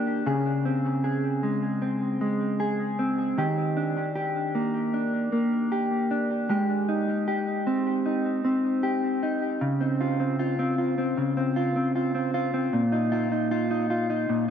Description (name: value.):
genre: dream pop.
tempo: 77 BPM.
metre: 4/4.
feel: straight.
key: unclear.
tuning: A4 = 440 Hz.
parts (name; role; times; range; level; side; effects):
mellow electric guitar; solo; 0.0-14.5 s; Bb2 to Ab4; -24 LUFS; equal; wide subtle chorus, tape echo.
room: moderate spring reverb, RT60 2.0 s.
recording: echo-heavy mix.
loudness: -24 LUFS.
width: side -8 dB against mid.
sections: 0.0-9.6 A section; 9.6-14.5 B section.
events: none.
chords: 0.3 Db5; 3.4 Ebmaj7; 6.5 Abmaj7; 9.6 Dbmaj7; 12.7 Bbsus4.